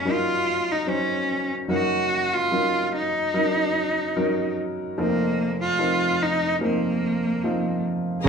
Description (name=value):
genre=folk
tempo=73 BPM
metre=4/4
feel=straight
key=unclear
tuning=A4 = 440 Hz
part: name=clear cello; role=melody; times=0.0-7.8 s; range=Bb3 to Gb4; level=-23 LUFS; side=equal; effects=none
part: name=warm upright piano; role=accompaniment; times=0.0-8.3 s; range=F1 to C5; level=-25 LUFS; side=equal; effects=none
part: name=dark chamber string section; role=sustained chords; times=8.2-8.3 s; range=Ab4 to Bb5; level=-27 LUFS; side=equal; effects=none
room=moderate large studio reverb, RT60 1.1 s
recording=band playing live in one room, small room reverb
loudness=-21 LUFS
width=side -6 dB against mid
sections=0.0-8.3 A section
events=none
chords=0.0 Gb6; 1.7 Ebm7/Gb; 5.0 F7sus4